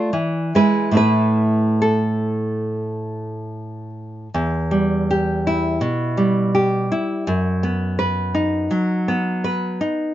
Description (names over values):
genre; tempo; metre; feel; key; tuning
romantic piece for solo classical guitar; 69-85 BPM; 4/4; rubato; E minor from 4.3 s; A4 = 438 Hz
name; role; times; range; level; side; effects
nylon-string guitar; solo; 0.0-10.1 s; E2 to D5; -18 LUFS; right 1 dB; none
room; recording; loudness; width
light reverb; nothing above 7.6 kHz; -17 LUFS; side -12 dB against mid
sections
0.0-4.3 A section; 4.3-10.1 B section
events
none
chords
0.1 E7; 1.0 A5; 4.3 Em; 7.3 B/F#